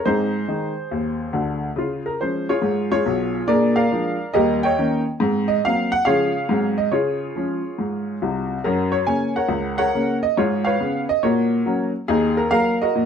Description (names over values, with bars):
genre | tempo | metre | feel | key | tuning
jazz, stride piano | 140 BPM | 4/4 | swing 66% on 8ths | Db major, F# major from 8.7 s | A4 = 439 Hz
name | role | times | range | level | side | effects
clear upright piano | solo | 0.0-13.1 s | Cb2 to G#5 | -18 LUFS | equal | none
room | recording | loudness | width
moderate studio reverb, RT60 0.6 s | none | -18 LUFS | side -7 dB against mid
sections
0.0-8.7 A section; 8.7-13.1 B section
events
none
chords
0.1 Ab; 1.8 Db; 3.5 Bb7; 4.4 Eb7; 5.2 Ab9; 6.1 Db; 6.5 Ab7; 6.9 Db; 8.7 F#; 10.4 C#7/G#; 11.2 F#/A#; 12.1 D#m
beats
| 0.06 0.49 0.92 1.35 | 1.78 2.21 2.63 3.06 | 3.50 3.92 4.36 4.78 | 5.21 5.64 6.07 6.50 | 6.93 7.36 7.79 8.22 | 8.65 9.08 9.51 9.94 | 10.37 10.80 11.23 11.66 | 12.09 12.52 12.95